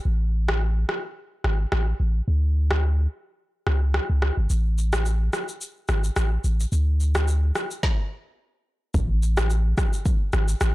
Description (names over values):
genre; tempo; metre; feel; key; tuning
afrobeats; 108 BPM; 4/4; swing 55% on 16ths; A major; A4 = 440 Hz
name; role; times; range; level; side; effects
punchy sub bass; bass; 0.1-10.7 s; G#1 to D2; -21 LUFS; equal; none
afro-pop drum kit; drums; 0.5-10.7 s; kick drum, rim click, shaker, snare drum; -26 LUFS; equal; soft clipping on snare
room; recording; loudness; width
little or no reverb; blown-out, overdriven recording, overdrive; -21 LUFS; side -18 dB against mid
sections
0.1-8.9 A section; 8.9-10.7 B section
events
stop 7.8-8.9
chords
none